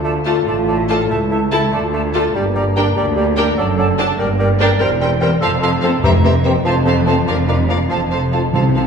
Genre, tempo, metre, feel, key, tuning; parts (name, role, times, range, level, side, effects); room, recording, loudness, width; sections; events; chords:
quick classical-period movement for symphony orchestra; 97 BPM (dotted quarters); 6/8; rubato; D minor, F major from 4.8 s; A4 = 440 Hz
clear clarinet; second line; 0.0-8.9 s; E4 to Bb4; -25 LUFS; equal
hollow flute section; second line; 0.0-8.8 s; G5 to Bb5; -25 LUFS; right 2 dB
warm cor anglais; second line; 0.0-8.9 s; C5 to E5; -27 LUFS; equal
clear bassoon; accompaniment; 0.0-8.8 s; E3 to A3; -23 LUFS; right 1 dB
dark French horn section; sustained chords; 0.0-8.4 s; A3 to F4; -24 LUFS; left 2 dB
dark chamber double bass section; bass; 0.0-8.9 s; E1 to D2; -21 LUFS; right 1 dB
warm chamber cello section; bass; 0.0-8.9 s; C#2 to C3; -20 LUFS; right 2 dB
rich chamber violin section; melody; 0.3-8.8 s; E5 to A5; -26 LUFS; left 2 dB
dark symphonic violin section; second line; 0.3-8.8 s; A4 to Bb4; -25 LUFS; left 3 dB
warm studio viola section; accompaniment; 0.3-8.8 s; C4 to F4; -24 LUFS; right 1 dB
timpani; percussion; 6.0-8.9 s; F2 to C3; -18 LUFS; left 1 dB
wet recital hall reverb, RT60 1.4 s; recorded in a church or concert hall; -13 LUFS; side -6 dB against mid
0.0-8.9 A section
0.0 Dm; 1.1 A/C#; 1.7 Dm; 2.4 Gm; 3.6 D/F#; 4.2 Gm; 4.8 C7/E; 5.4 F; 6.0 C7/F; 6.7 F; 7.3 Bb/F; 7.9 F